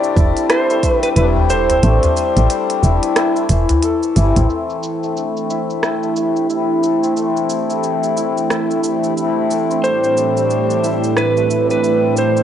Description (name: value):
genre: organic downtempo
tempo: 90 BPM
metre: 4/4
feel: swing 60% on 16ths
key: unclear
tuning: A4 = 440 Hz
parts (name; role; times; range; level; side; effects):
- clean lap steel guitar; melody; 0.0-2.5, 9.8-12.4 s; B4 to D5; -18 LUFS; right 1 dB; cassette tape, tape echo
- pedal harmonium; accompaniment; 0.0-12.4 s; A2 to E4; -21 LUFS; left 9 dB; sidechain pumping, low-pass filter, cassette tape, tape echo
- santur; arpeggios; 0.0-12.4 s; E3 to A4; -20 LUFS; equal; low-pass filter, cassette tape, tape echo
- organic electronic drum kit; drums; 0.0-12.4 s; cabasa, hi-hat, rim click; -23 LUFS; right 2 dB; low-pass filter on hats, studio reverb, cassette tape, low-pass filter on perc, low-pass filter on snare
- woody FM bass; bass; 0.2-4.5 s; E1 to A1; -14 LUFS; right 1 dB; none
- electronic kick drum; drums; 0.2-1.0 s; none; -17 LUFS; right 1 dB; studio reverb, cassette tape
- udu; percussion; 1.4-4.5 s; none; -20 LUFS; left 1 dB; none
- warm analog pad; sustained chords; 4.5-12.4 s; A2 to G4; -22 LUFS; right 9 dB; wide subtle chorus, sidechain pumping, cassette tape
room: moderate spring reverb, RT60 1.5 s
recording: home recording on cassette, nothing above 10.7 kHz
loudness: -14 LUFS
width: side -10 dB against mid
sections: 0.0-4.5 A section; 4.5-12.4 B section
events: kick drops out 1.8-4.5; filter sweep on harmonium 4.5-12.4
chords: 0.0 Gsus4; 9.8 Gsus4/A